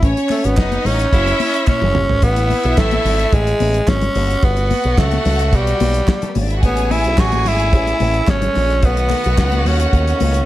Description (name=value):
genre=disco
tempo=109 BPM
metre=4/4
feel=straight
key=unclear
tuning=A4 = 440 Hz
part: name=raspy tenor saxophone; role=melody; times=0.0-10.5 s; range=G3 to F#4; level=-19 LUFS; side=equal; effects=slapback echo
part: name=clear symphonic string section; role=second line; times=0.0-10.5 s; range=A3 to G#5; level=-23 LUFS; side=left 1 dB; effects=slapback echo
part: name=picked electric bass with an envelope filter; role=bass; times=0.0-10.4 s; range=F#1 to D#2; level=-18 LUFS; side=equal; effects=none
part: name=damped 70s drum kit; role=drums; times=0.0-10.5 s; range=hi-hat, kick drum, snare drum, toms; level=-18 LUFS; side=equal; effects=none
part: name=congas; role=percussion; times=0.2-10.3 s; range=none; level=-26 LUFS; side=left 6 dB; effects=none
part: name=group handclap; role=percussion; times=0.3-9.5 s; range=none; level=-34 LUFS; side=right 4 dB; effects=none
part: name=bright tonewheel organ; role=sustained chords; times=6.6-10.5 s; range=D#3 to C#4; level=-28 LUFS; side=right 3 dB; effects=overdrive, chorus vibrato, stopped rotary speaker
room=light reverb, small room ambience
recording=dark, warm production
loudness=-13 LUFS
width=side -15 dB against mid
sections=0.0-2.2 A section; 2.2-10.5 B section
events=drum fill 1.7-2.2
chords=0.0 A6; 2.2 Asus2; 4.2 Gmaj9#11; 6.6 Amaj7; 8.8 B9